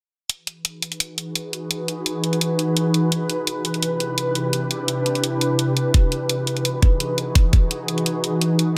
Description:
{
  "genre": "liquid drum and bass",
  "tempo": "170 BPM",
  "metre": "4/4",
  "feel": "straight",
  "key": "E major",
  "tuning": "A4 = 440 Hz",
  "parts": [
    { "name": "ethereal airy pad", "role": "sustained chords", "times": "1.2-8.7 s", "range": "C3 to B4", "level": "-24 LUFS", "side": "equal", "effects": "ensemble chorus, built-in reverb, sidechain pumping" },
    { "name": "electronic hi-hat", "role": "drums", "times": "0.3-8.7 s", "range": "none", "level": "-26 LUFS", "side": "equal", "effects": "none" },
    { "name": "electronic kick drum", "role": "drums", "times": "5.9-7.6 s", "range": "none", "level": "-17 LUFS", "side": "equal", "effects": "none" }
  ],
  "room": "light reverb, digital ambience",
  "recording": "none",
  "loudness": "-22 LUFS",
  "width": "mono",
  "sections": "0.3-8.8 A section",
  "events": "none",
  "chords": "0.3 Emaj9; 3.1 Cmaj9; 5.9 Emaj9"
}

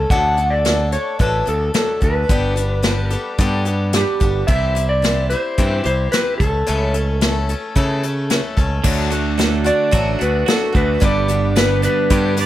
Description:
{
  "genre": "folk rock and heartland rock",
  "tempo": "110 BPM",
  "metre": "4/4",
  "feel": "straight",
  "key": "D major",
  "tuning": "A4 = 440 Hz",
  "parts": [
    { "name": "electric slide guitar", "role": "melody", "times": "0.0-12.4 s", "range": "G4 to F#5", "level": "-20 LUFS", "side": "equal", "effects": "analog delay" },
    { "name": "picked swing-style acoustic guitar", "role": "accompaniment", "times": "0.0-12.5 s", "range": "G2 to A4", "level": "-23 LUFS", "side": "left 3 dB", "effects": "none" },
    { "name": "modern bright picked electric bass", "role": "bass", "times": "0.0-12.5 s", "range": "G1 to C#3", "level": "-20 LUFS", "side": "equal", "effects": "none" },
    { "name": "soft brush drum kit", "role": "drums", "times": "0.1-12.5 s", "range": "crash cymbal, hi-hat, kick drum, snare drum", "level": "-19 LUFS", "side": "equal", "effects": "none" },
    { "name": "twelve-string electric guitar", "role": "riff", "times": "8.8-12.5 s", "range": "G2 to G4", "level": "-22 LUFS", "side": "right 10 dB", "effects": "none" },
    { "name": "bright harmonica", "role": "second line", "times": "12.4-12.5 s", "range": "D5", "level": "-22 LUFS", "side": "right 10 dB", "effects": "none" }
  ],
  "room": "little or no reverb",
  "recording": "none",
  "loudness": "-15 LUFS",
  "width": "side -13 dB against mid",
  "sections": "0.0-8.9 A section; 8.9-12.5 B section",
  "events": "electric slide guitar solo 8.9-12.5",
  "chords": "0.1 D; 2.3 G; 4.5 C; 6.4 A/C#; 8.9 D; 11.0 G"
}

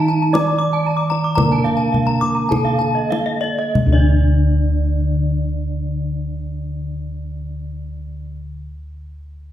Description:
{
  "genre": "Balinese gamelan",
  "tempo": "46-62 BPM",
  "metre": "4/4",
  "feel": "straight",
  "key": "D pelog",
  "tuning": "A4 = 442 Hz",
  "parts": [
    { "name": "gamelan-type bronze metallophone", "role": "melody", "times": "0.0-8.3 s", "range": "D4 to D5", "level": "-25 LUFS", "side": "left 1 dB", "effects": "none" },
    { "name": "gamelan-type bronze metallophone", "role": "accompaniment", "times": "0.0-8.3 s", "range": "D3 to Bb3-20c", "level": "-23 LUFS", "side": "right 1 dB", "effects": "none" },
    { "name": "gamelan-type bronze metallophone", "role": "arpeggios", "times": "0.0-8.3 s", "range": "D5 to D6", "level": "-23 LUFS", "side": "left 2 dB", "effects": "none" },
    { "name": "gamelan-type bossed gongs", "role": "bass", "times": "0.0-8.3 s", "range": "D2 to Eb4+20c", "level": "-21 LUFS", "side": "equal", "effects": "none" },
    { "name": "kendang", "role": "percussion", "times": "0.1-4.4 s", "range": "none", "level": "-22 LUFS", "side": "left 1 dB", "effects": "none" },
    { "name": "gamelan-type bronze metallophone", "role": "arpeggios", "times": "0.2-8.4 s", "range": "D5 to D6", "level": "-26 LUFS", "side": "right 4 dB", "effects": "none" }
  ],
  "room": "wet recital hall reverb, RT60 1.4 s",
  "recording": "heard from further back in the room",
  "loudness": "-16 LUFS",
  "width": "side -11 dB against mid",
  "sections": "0.0-3.7 A section; 3.7-8.9 B section",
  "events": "slowing down 0.0-3.7",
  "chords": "none"
}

